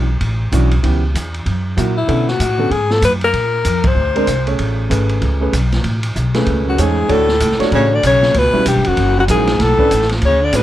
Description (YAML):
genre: jazz, small-group swing and bop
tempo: 192 BPM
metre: 4/4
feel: swing 61% on 8ths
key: unclear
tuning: A4 = 440 Hz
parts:
  - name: warm grand piano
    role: accompaniment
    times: 0.0-10.6 s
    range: D3 to C#5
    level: -19 LUFS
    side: right 2 dB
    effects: none
  - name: upright bass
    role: bass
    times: 0.0-10.6 s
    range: E1 to B2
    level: -17 LUFS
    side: equal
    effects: none
  - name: open jazz drum kit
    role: drums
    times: 0.2-10.6 s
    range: hi-hat, kick drum, ride cymbal, snare drum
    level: -22 LUFS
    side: right 1 dB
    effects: none
  - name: clear alto saxophone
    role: melody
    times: 2.0-4.5, 6.7-10.6 s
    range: E4 to D5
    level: -15 LUFS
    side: left 3 dB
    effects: none
  - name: breathy baritone saxophone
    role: second line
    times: 6.7-10.6 s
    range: F#2 to D3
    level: -20 LUFS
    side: right 4 dB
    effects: none
room: little or no reverb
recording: close, detailed microphones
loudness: -13 LUFS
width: side -13 dB against mid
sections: 0.0-7.1 A section; 7.1-10.6 B section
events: band accent 3.8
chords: 0.0 Dmaj9; 0.8 C#m7b5; 1.5 F#7; 2.1 Bm9; 3.3 Bb9; 4.6 Amaj9; 7.1 Dmaj7; 8.3 C#m7b5; 9.0 F#7; 9.6 Bm9